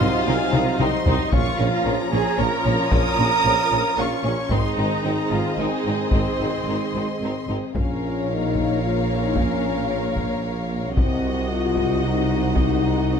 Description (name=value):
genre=cinematic, epic orchestral film score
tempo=112 BPM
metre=3/4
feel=straight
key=Bb minor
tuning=A4 = 440 Hz
part: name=warm symphonic violin section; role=melody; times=0.0-13.2 s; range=F5 to Eb6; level=-31 LUFS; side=left 4 dB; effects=none
part: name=warm symphonic violin section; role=second line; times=0.0-13.2 s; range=C4 to Eb5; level=-30 LUFS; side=left 5 dB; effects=none
part: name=warm symphonic viola section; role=accompaniment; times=0.0-13.2 s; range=C4 to Bb4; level=-29 LUFS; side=right 1 dB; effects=none
part: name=bright trombone section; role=sustained chords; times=0.0-7.5 s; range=Bb2 to Ab3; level=-30 LUFS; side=right 3 dB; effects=none
part: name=dark French horn section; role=sustained chords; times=0.0-13.2 s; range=Bb3 to F4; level=-28 LUFS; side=left 8 dB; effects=none
part: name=warm symphonic string section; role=sustained chords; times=0.0-13.2 s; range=Gb3 to F5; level=-31 LUFS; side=right 1 dB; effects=none
part: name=warm trumpet section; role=stabs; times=0.0-7.2 s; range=C5 to Bb5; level=-26 LUFS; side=right 4 dB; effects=none
part: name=clear tuba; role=bass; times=0.0-13.2 s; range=Ab1 to C2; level=-29 LUFS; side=right 4 dB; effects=none
part: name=dark symphonic cello section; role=bass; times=0.0-13.2 s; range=Ab2 to C3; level=-29 LUFS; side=right 3 dB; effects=none
part: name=warm symphonic double bass section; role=bass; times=0.0-13.2 s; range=Ab1 to C2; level=-29 LUFS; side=right 3 dB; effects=none
part: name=taiko ensemble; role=drums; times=0.0-13.1 s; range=none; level=-23 LUFS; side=left 1 dB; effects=none
part: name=timpani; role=percussion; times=1.3-2.1 s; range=Bb2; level=-32 LUFS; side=equal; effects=none
room=moderate recital hall reverb, RT60 1.4 s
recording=close, detailed microphones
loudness=-19 LUFS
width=side -7 dB against mid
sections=0.0-7.8 A section; 7.8-13.2 B section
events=drum fill 0.5-1.3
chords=0.0 Cdim; 1.3 Bbm; 4.5 Ab; 7.8 Bbm; 11.0 Cdim